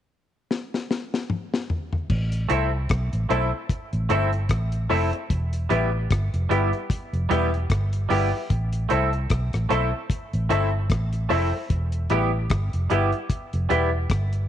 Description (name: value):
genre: roots reggae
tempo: 75 BPM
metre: 4/4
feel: swing 57% on 16ths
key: A minor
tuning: A4 = 441 Hz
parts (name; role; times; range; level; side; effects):
- deep reggae drum kit; drums; 0.5-14.5 s; crash cymbal, hi-hat, kick drum, rim click, snare drum, toms; -26 LUFS; left 2 dB; none
- vintage muted fingered electric bass; bass; 2.1-14.5 s; E1 to C2; -24 LUFS; equal; none
- semi-hollow electric guitar; accompaniment; 2.5-13.9 s; G3 to A4; -28 LUFS; right 10 dB; lush chorus
- bright upright piano; stabs; 2.5-13.9 s; E4 to E5; -28 LUFS; left 10 dB; none
room: light reverb, studio reverb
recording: 1960s-style stereo with parts hard left and right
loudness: -22 LUFS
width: side -10 dB against mid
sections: 0.0-2.1 A section; 2.1-14.5 B section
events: drum fill 0.5-2.1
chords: 0.0 N.C.; 2.1 Am; 5.3 Em; 8.5 Am; 11.7 Em